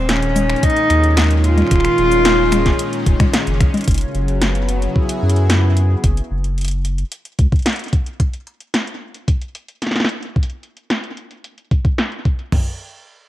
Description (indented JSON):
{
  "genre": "IDM",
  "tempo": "111 BPM",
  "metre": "4/4",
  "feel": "straight",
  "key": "unclear",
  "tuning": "A4 = 440 Hz",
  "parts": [
    { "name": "warm cello", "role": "melody", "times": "0.0-3.3 s", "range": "B#3 to E#4", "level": "-17 LUFS", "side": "equal", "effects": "ping-pong delay" },
    { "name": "warm analog pad", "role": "sustained chords", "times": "0.0-6.0 s", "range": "A#2 to G#4", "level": "-23 LUFS", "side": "equal", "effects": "chorus" },
    { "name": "warm sub bass", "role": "bass", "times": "0.0-7.5 s", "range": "D#1 to F#2", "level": "-17 LUFS", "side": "equal", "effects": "none" },
    { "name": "electro analog drum machine", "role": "drums", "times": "0.1-12.5 s", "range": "cabasa, congas, finger snaps, hi-hat, snare drum", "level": "-20 LUFS", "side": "left 1 dB", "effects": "low-pass filter on hats, low-pass filter on snare, low-pass filter on perc, digital delay" },
    { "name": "jungle sampler-style drum kit", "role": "drums", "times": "0.6-12.6 s", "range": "crash cymbal, kick drum, toms", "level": "-16 LUFS", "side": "equal", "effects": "none" }
  ],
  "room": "light reverb",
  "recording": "rough home demo mix",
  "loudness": "-15 LUFS",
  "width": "side -14 dB against mid",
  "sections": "0.0-3.9 A section; 3.9-12.5 B section",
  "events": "drum fill 3.6",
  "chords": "0.0 D#sus2; 3.9 F#5; 8.2 N.C."
}